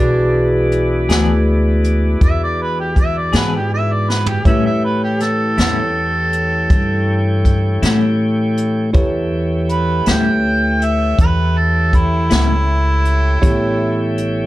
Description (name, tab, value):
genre	slow blues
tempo	54 BPM (dotted quarters)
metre	12/8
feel	straight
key	unclear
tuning	A4 = 440 Hz
part	mellow harmonica	melody	0.0-14.1 s	D4 to G5	-20 LUFS	right 1 dB	overdrive
part	bell-like tine electric piano	accompaniment	0.0-14.5 s	B3 to D5	-23 LUFS	right 2 dB	none
part	tonewheel organ	sustained chords	0.0-14.5 s	E3 to G4	-24 LUFS	equal	slow rotary speaker
part	upright bass	bass	0.0-14.5 s	A1 to A2	-17 LUFS	equal	none
part	jazz brush drum kit	drums	0.7-14.4 s	hi-hat, kick drum, snare drum, toms	-16 LUFS	equal	none
part	semi-hollow electric guitar	accompaniment	1.1-12.5 s	A2 to G#4	-21 LUFS	left 4 dB	tremolo
room	light reverb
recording	dark, warm production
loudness	-13 LUFS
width	side -16 dB against mid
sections	0.0-14.5 A section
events	harmonica solo 0.0-14.5; drum fill 4.1-4.5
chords	0.0 E7; 4.5 A7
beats	1.10 2.22 3.34 | 4.46 5.58 6.71 7.83 | 8.95 10.07 11.19 12.31 | 13.43